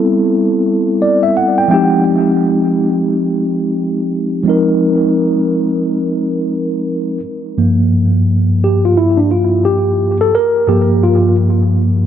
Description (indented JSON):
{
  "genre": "hip hop",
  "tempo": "87 BPM",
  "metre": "4/4",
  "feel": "swing 61% on 16ths",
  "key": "unclear",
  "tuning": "A4 = 442 Hz",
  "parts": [
    { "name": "mellow tine electric piano", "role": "solo", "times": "0.0-12.1 s", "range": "G2 to G5", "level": "-11 LUFS", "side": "equal", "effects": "medium stereo tremolo, analog delay" }
  ],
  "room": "moderate spring reverb, RT60 1.7 s",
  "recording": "echo-heavy mix",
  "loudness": "-11 LUFS",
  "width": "side -10 dB against mid",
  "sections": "0.0-7.6 A section; 7.6-12.1 B section",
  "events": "tine electric piano fill 0.7-2.1; tine electric piano solo 7.6-12.1",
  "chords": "0.0 Am9; 1.7 Fm9; 7.6 Gm7"
}